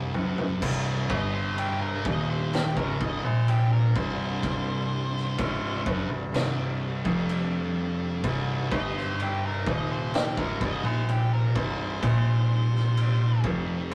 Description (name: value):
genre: stoner and doom metal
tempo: 63 BPM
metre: 4/4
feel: straight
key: C minor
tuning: A4 = 438 Hz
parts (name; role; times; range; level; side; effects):
- string machine, violins; sustained chords; 0.0-13.9 s; C3 to G4; -40 LUFS; equal; ensemble chorus
- thick fuzz guitar; riff; 0.0-13.9 s; C2 to Bb2; -32 LUFS; equal; distortion
- thick fuzz guitar; riff; 0.0-13.9 s; C2 to Bb2; -32 LUFS; equal; distortion
- bright baby grand piano; bass; 0.0-13.9 s; C1 to Bb1; -34 LUFS; equal; tube saturation
- oversized low-tuned drum kit; drums; 0.1-13.9 s; crash cymbal, kick drum, snare drum, toms; -35 LUFS; equal; none
- octave-fuzz lead guitar; melody; 1.1-13.4 s; G4 to Eb5; -37 LUFS; equal; distortion
room: moderate small room reverb, RT60 0.5 s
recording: rough rehearsal-room recording, warm saturation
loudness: -27 LUFS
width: mono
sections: 0.6-13.9 A section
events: drum fill 0.0-0.6; lead electric guitar solo 0.6-13.9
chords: 0.0 C5; 0.6 Cm